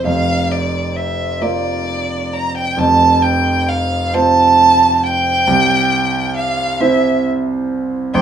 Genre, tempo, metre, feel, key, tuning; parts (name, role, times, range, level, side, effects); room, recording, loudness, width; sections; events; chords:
classical, romantic duo for violin and grand piano; 44 BPM (dotted quarters); 6/8; rubato; A4 = 440 Hz
rich violin; melody; 0.0-8.2 s; D5 to Bb5; -14 LUFS; right 2 dB
clear grand piano; accompaniment; 0.0-8.2 s; F1 to D5; -17 LUFS; right 2 dB
moderate studio reverb, RT60 0.7 s; small room ambience; -13 LUFS; side -8 dB against mid
0.0-8.2 A section
0.1 Bb/F; 2.8 F; 5.5 C